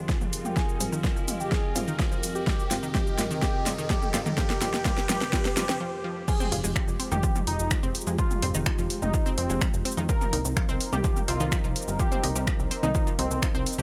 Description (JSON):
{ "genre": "melodic techno", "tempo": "126 BPM", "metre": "4/4", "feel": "straight", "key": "F minor", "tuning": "A4 = 440 Hz", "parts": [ { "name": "dark analog pad", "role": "sustained chords", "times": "0.0-13.8 s", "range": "C3 to F5", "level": "-40 LUFS", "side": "equal", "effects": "chorus, sidechain pumping" }, { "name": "unison pluck", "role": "arpeggios", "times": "0.0-13.8 s", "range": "Eb3 to C5", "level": "-37 LUFS", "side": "equal", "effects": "sidechain pumping, tape echo" }, { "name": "analog drone", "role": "drone", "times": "0.0-5.8 s", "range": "F2", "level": "-51 LUFS", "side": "equal", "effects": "none" }, { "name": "riser", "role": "sound effects", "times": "0.0-5.8 s", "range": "none", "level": "-42 LUFS", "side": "equal", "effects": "none" }, { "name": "warbly tape-like pad", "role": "texture", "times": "0.0-5.8 s", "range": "C4 to G5", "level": "-43 LUFS", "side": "equal", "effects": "chorus, built-in reverb, sidechain pumping" }, { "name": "deep house drum kit", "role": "drums", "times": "0.1-13.8 s", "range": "crash cymbal, finger snaps, hi-hat, shaker, snare drum, toms", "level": "-33 LUFS", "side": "equal", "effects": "overdrive, sidechain pumping on perc, studio reverb, sidechain pumping on hats, sidechain pumping on toms, sidechain pumping on cymbals" }, { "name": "electronic kick drum", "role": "drums", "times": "0.1-13.5 s", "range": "none", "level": "-30 LUFS", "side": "equal", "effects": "overdrive, studio reverb" }, { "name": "unison lead", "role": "melody", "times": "0.4-13.5 s", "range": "C4 to Bb4", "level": "-36 LUFS", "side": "equal", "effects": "sidechain pumping, dub echo" }, { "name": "filtered dub chord stab", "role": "stabs", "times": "0.8-13.8 s", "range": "G2 to F4", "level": "-41 LUFS", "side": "equal", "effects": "none" }, { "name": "plucky analog bass", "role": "bass", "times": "6.5-13.8 s", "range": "F1 to F2", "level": "-32 LUFS", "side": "equal", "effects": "sidechain pumping" } ], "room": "light reverb", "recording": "none", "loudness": "-27 LUFS", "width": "mono", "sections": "0.0-6.3 A section; 6.3-13.8 B section", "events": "build-up 0.0-6.3; drum fill 0.0-5.8; riser 0.0-5.8; filter sweep on synth arpeggio sound 0.0-6.3; filter sweep on analog synth lead 0.0-6.3; break 5.8-6.3; drop 6.3-13.8", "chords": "0.0 Fmadd9; 2.5 Cm7; 6.3 Fmadd9; 10.1 Cm7" }